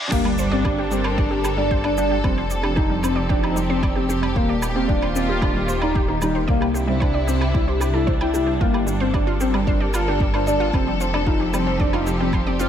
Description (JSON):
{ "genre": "piano and strings electronica", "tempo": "113 BPM", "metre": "4/4", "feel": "straight", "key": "G minor", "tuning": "A4 = 441 Hz", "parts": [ { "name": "rich studio string section", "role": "sustained chords", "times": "0.0-12.7 s", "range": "C3 to Bb4", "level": "-26 LUFS", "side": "equal", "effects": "sidechain pumping" }, { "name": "riser, reverse cymbal and sub drop", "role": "sound effects", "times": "0.0-2.2 s", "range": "none", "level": "-32 LUFS", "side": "left 1 dB", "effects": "none" }, { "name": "wide unison pluck", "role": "arpeggios", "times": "0.1-12.7 s", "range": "G3 to G5", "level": "-28 LUFS", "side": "right 2 dB", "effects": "sidechain pumping, ping-pong delay" }, { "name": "felt-muted upright piano", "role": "riff", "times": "0.1-12.7 s", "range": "Bb3 to G4", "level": "-23 LUFS", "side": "left 2 dB", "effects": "wide subtle chorus, ping-pong delay" }, { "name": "dark detuned saw bass", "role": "bass", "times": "0.1-12.7 s", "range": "Eb1 to C2", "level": "-25 LUFS", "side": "equal", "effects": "sidechain pumping" }, { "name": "electronic crash cymbal, woodblock and shaker", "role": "drums", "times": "0.1-12.7 s", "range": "none", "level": "-34 LUFS", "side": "right 2 dB", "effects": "none" }, { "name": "electronic kick drum", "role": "drums", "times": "0.1-12.4 s", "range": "none", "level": "-22 LUFS", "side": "equal", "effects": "none" } ], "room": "moderate plate reverb, RT60 2.3 s", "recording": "dreamy mix soaked in reverb, high-pass filter", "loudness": "-18 LUFS", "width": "side -9 dB against mid", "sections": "0.1-12.7 A section", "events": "drop 0.1-12.7; impact 0.1-2.2", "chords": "0.1 Gm; 2.2 F7; 4.4 Ebadd9; 6.5 C7; 8.6 Gm; 10.7 F7" }